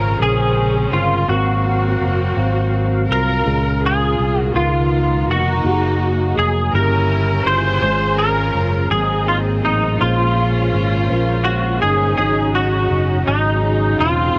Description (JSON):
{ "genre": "slow gospel", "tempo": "55 BPM (dotted quarters)", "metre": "6/8", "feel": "straight", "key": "unclear", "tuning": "A4 = 438 Hz", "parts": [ { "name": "rich studio string section", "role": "melody", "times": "0.0-14.4 s", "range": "Gb3 to C5", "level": "-24 LUFS", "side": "equal", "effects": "none" }, { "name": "semi-hollow electric guitar", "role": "melody", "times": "0.0-14.4 s", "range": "Eb4 to C5", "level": "-22 LUFS", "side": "equal", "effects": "ensemble chorus" }, { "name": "mellow tine electric piano", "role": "accompaniment", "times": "0.0-14.4 s", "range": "G2 to F5", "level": "-26 LUFS", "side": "equal", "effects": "none" }, { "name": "percussive tonewheel organ", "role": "sustained chords", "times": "0.0-14.3 s", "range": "Cb3 to G5", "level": "-30 LUFS", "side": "equal", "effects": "none" }, { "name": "fingered electric bass", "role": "bass", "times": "0.0-14.4 s", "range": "Fb1 to Db2", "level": "-22 LUFS", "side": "equal", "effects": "none" }, { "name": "dark French horn section", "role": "sustained chords", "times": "12.2-14.4 s", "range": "Db3 to Eb4", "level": "-33 LUFS", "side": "equal", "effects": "none" } ], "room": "light reverb", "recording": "none", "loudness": "-17 LUFS", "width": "mono", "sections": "0.0-14.4 A section", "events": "none", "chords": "0.0 Bbm9; 1.3 Ab13; 3.5 Db6; 4.6 Db13; 5.6 Gb69; 6.7 Gdim7; 7.8 Db/Ab; 8.9 Ab9; 10.0 Bbm9; 12.2 Ab7sus4" }